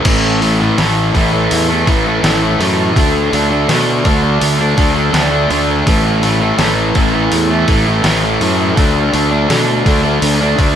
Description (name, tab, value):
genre	rock, shoegaze and dream pop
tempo	83 BPM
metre	4/4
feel	straight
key	unclear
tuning	A4 = 436 Hz
part	fuzz guitar	riff	0.0-10.8 s	A2 to D4	-13 LUFS	equal	distortion, wide subtle chorus
part	fuzz fingered electric bass	bass	0.1-10.8 s	A1 to B2	-17 LUFS	equal	overdrive
part	detuned 8-bit digital drum machine	drums	0.1-10.8 s	crash cymbal, hi-hat, kick drum, snare drum	-17 LUFS	equal	none
room	moderate lush hall reverb, RT60 2.9 s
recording	dreamy mix soaked in reverb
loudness	-11 LUFS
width	side -9 dB against mid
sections	0.1-10.8 A section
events	none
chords	0.1 A5; 3.0 D5; 5.9 A5; 8.8 D5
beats	| 0.06 0.78 1.51 2.24 | 2.96 3.69 4.42 5.14 | 5.87 6.59 7.32 8.05 | 8.77 9.50 10.22